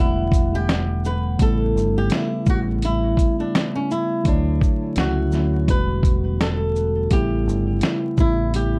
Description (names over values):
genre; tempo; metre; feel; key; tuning
lo-fi hip hop; 84 BPM; 4/4; swing 55% on 16ths; unclear; A4 = 444 Hz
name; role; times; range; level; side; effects
flamenco guitar; melody; 0.0-8.8 s; C#4 to B4; -28 LUFS; equal; none
muted felt-like synth keys; accompaniment; 0.0-8.8 s; C#3 to F#5; -26 LUFS; equal; chorus, cassette tape
deep dub fingered electric bass; bass; 0.0-8.8 s; E1 to D2; -25 LUFS; equal; none
dusty soul sampler-style drum kit; drums; 0.3-8.7 s; hi-hat, kick drum, shaker, snare drum; -23 LUFS; equal; none
room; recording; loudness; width
light reverb; vinyl crackle; -20 LUFS; mono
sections
0.0-8.8 A section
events
none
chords
0.0 Em11; 1.4 A7; 2.5 A9; 4.2 Dmaj7; 5.7 Em11; 7.1 A7; 8.2 A9